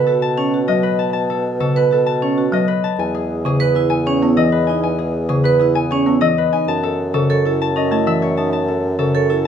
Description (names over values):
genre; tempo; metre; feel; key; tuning
classical, minimalist pattern music; 195 BPM; 6/4; straight; unclear; A4 = 440 Hz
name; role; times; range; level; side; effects
concert harp; melody; 0.0-9.5 s; G#4 to A5; -21 LUFS; left 8 dB; none
vibraphone with medium mallets; arpeggios; 0.0-9.5 s; C#4 to B4; -19 LUFS; right 6 dB; none
mellow bassoon; bass; 0.0-9.5 s; E2 to B2; -21 LUFS; right 1 dB; none
folk marimba with medium hard mallets; accompaniment; 0.7-9.2 s; C#3 to B3; -21 LUFS; equal; none
room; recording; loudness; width
moderate large studio reverb, RT60 0.8 s; none; -15 LUFS; side -8 dB against mid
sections
0.0-9.5 A section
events
none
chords
0.0 B7; 3.0 Emaj7; 6.7 F#m7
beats
0.22 0.53 0.84 | 1.14 1.45 1.76 2.07 2.38 2.68 | 2.99 3.30 3.61 3.91 4.22 4.53 | 4.84 5.14 5.45 5.76 6.07 6.38 | 6.68 6.99 7.30 7.61 7.91 8.22 | 8.53 8.84 9.14 9.45